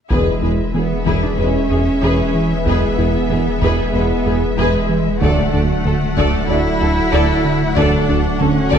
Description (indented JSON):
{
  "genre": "cinematic, hybrid orchestral and electronic film score",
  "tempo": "94 BPM",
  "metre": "4/4",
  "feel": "straight",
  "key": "unclear",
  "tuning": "A4 = 438 Hz",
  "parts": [
    { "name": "warm symphonic violin section", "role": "melody", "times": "0.1-8.8 s", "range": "E5 to F#5", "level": "-28 LUFS", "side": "left 6 dB", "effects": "none" },
    { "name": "rich symphonic violin section", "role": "second line", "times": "0.1-8.8 s", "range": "G#4 to D5", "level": "-25 LUFS", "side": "left 6 dB", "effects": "none" },
    { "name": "clear symphonic viola section", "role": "accompaniment", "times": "0.1-8.8 s", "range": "G#4 to A4", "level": "-25 LUFS", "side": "right 1 dB", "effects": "none" },
    { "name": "dark French horn section", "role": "sustained chords", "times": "0.1-8.0 s", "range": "F#4 to D5", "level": "-28 LUFS", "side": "left 5 dB", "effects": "none" },
    { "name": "warm analog pad", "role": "sustained chords", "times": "0.1-8.8 s", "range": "E3 to F#5", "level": "-24 LUFS", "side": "equal", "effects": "wide subtle chorus" },
    { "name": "warm trombone section", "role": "sustained chords", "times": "0.1-8.0 s", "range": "E3 to A3", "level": "-30 LUFS", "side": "right 2 dB", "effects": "none" },
    { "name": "thumb-piano-like synth pluck", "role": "arpeggios", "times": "0.1-8.8 s", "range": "D3 to E4", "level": "-26 LUFS", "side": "left 4 dB", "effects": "chorus, phaser" },
    { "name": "round analog bass", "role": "riff", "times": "0.1-8.8 s", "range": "D2 to E3", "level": "-20 LUFS", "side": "right 2 dB", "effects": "none" },
    { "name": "mellow tuba", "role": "bass", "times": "0.1-8.8 s", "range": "E1 to D2", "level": "-25 LUFS", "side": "right 4 dB", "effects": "none" },
    { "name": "pure sine sub bass", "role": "bass", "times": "0.1-8.8 s", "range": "D1 to E1", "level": "-25 LUFS", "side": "left 1 dB", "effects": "none" },
    { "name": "rich symphonic cello section", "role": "bass", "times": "0.1-8.8 s", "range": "G#3 to E4", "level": "-22 LUFS", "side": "right 2 dB", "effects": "none" },
    { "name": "warm studio double bass section", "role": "bass", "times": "0.1-8.8 s", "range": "D2 to E2", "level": "-26 LUFS", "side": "right 4 dB", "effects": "none" },
    { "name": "taiko ensemble", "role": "drums", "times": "0.1-8.8 s", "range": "none", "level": "-25 LUFS", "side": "left 1 dB", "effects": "none" }
  ],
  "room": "moderate scoring stage reverb, RT60 1.8 s",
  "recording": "dark, warm production",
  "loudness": "-14 LUFS",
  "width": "side -8 dB against mid",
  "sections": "0.1-8.8 A section",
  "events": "none",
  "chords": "0.1 E; 5.2 D"
}